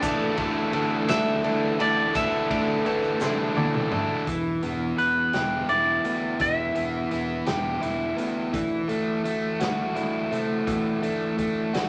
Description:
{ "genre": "indie rock", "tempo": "56 BPM (dotted quarters)", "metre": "6/8", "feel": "straight", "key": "E minor", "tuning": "A4 = 440 Hz", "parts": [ { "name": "clean electric guitar", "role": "melody", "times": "0.0-8.1 s", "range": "B4 to E5", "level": "-28 LUFS", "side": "equal", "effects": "phaser" }, { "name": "crunchy overdriven guitar", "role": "riff", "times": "0.0-4.3 s", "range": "D3 to D4", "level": "-34 LUFS", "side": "equal", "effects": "none" }, { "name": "overdriven electric guitar", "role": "riff", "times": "0.0-11.9 s", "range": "E3 to A4", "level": "-28 LUFS", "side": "equal", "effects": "none" }, { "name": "picked electric bass", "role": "bass", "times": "0.0-11.9 s", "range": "E1 to C3", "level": "-36 LUFS", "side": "equal", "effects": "none" }, { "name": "raw garage drum kit", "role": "drums", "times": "0.0-11.9 s", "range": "hi-hat, kick drum, ride cymbal, snare drum, toms", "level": "-35 LUFS", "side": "equal", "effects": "none" }, { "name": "tube shaker", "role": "percussion", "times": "0.0-3.4 s", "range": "none", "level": "-48 LUFS", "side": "equal", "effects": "none" }, { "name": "bell-like tine electric piano", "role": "second line", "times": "2.9-4.2 s", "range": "B4 to D5", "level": "-37 LUFS", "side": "equal", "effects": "none" } ], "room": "moderate studio reverb, RT60 0.5 s", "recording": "none", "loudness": "-25 LUFS", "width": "mono", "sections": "0.0-4.3 A section; 4.3-11.9 B section", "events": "drum fill 3.2-4.3", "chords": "0.0 Dsus2; 4.3 Em; 8.5 Dadd9", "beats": "| 0.03 1.09 | 2.15 3.21 | 4.27 5.34 | 6.40 7.47 | 8.54 9.60 | 10.67 11.74" }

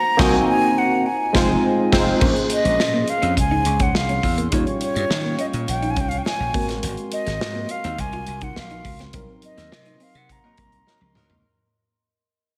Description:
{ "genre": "polished 1980s jazz-funk pop", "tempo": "104 BPM", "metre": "4/4", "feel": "straight", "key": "unclear", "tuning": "A4 = 441 Hz", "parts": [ { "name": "breathy concert flute", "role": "melody", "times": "0.0-11.2 s", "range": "Db5 to Bb5", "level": "-26 LUFS", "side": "equal", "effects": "slapback echo" }, { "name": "glass harmonica", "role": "sustained chords", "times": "0.0-11.4 s", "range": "Db4 to Db6", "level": "-36 LUFS", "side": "equal", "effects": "none" }, { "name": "warm horn section", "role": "second line", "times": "0.2-2.1, 10.4-11.3 s", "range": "Gb3 to Eb5", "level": "-33 LUFS", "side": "equal", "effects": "slapback echo" }, { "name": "tine electric piano", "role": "accompaniment", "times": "0.2-11.5 s", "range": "Gb3 to Db5", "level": "-25 LUFS", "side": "equal", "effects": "ensemble chorus, slapback echo" }, { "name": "slap bass", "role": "bass", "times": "0.2-11.4 s", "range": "F1 to Eb3", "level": "-28 LUFS", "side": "equal", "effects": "none" }, { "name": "modern studio drum kit", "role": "drums", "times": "0.2-11.4 s", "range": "crash cymbal, hi-hat, kick drum, snare drum, toms", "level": "-26 LUFS", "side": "equal", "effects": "none" }, { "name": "clean electric guitar", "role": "riff", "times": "2.2-11.4 s", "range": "G3 to F4", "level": "-33 LUFS", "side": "equal", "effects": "analog chorus, slapback echo" } ], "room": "moderate lush hall reverb, RT60 1.9 s", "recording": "big arena sound", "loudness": "-20 LUFS", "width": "mono", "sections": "0.0-2.2 A section; 2.2-11.4 B section", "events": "band accent 0.0-2.2, 9.1-11.4; fade-out 2.2-11.4; drum fill 10.9-11.4", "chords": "0.0 Cm7b5; 1.1 Fm7; 2.2 Bbm9; 4.5 Eb9; 6.5 Ab9; 9.1 Cm7b5", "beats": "0.48 1.06 1.64 | 2.21 2.79 3.37 3.95 | 4.53 5.10 5.68 6.26 | 6.83 7.41 7.99 8.56 | 9.14 9.72 10.29 10.87" }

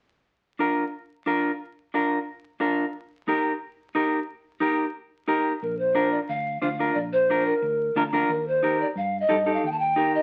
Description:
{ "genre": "latin", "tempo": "179 BPM", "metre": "4/4", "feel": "straight", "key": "Bb major", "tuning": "A4 = 440 Hz", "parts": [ { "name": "mellow electric guitar", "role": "accompaniment", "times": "0.6-10.2 s", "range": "D4 to C5", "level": "-26 LUFS", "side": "equal", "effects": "none" }, { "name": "mellow hollow polished pan flute", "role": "melody", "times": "5.6-10.2 s", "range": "Bb4 to A5", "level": "-26 LUFS", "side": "equal", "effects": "none" }, { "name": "hollow-body short-scale fingered electric bass", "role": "bass", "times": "5.6-10.2 s", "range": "Bb1 to G2", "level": "-38 LUFS", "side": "equal", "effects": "none" } ], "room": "wet studio reverb, RT60 0.6 s", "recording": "very old 78 rpm record, vinyl crackle", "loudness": "-25 LUFS", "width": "mono", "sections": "0.3-5.6 A section; 5.6-10.2 B section", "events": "none", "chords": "0.3 Bb; 2.9 Eb; 5.6 Bb; 8.3 Eb", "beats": "| 0.27 0.60 0.94 1.27 | 1.61 1.94 2.28 2.61 | 2.95 3.28 3.62 3.95 | 4.29 4.62 4.95 5.29 | 5.62 5.96 6.29 6.63 | 6.96 7.29 7.63 7.96 | 8.29 8.63 8.96 9.30 | 9.63 9.96" }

